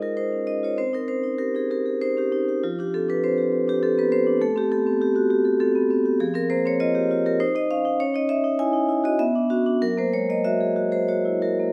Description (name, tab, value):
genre	classical, contemporary piece for solo vibraphone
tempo	100 BPM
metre	3/4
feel	rubato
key	unclear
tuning	A4 = 436 Hz
part	vibraphone with medium mallets	solo	0.0-11.7 s	F3 to Ab5	-23 LUFS	equal	none
room	moderate scoring stage reverb, RT60 1.6 s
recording	none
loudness	-23 LUFS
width	mono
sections	0.0-11.7 A section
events	none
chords	0.0 Absus2; 0.8 Cm; 2.6 Fsus2; 4.4 Am7; 6.2 Fsus2; 7.4 Ebsus2; 8.0 Dbmadd9; 9.2 Bmadd9; 9.8 Gb9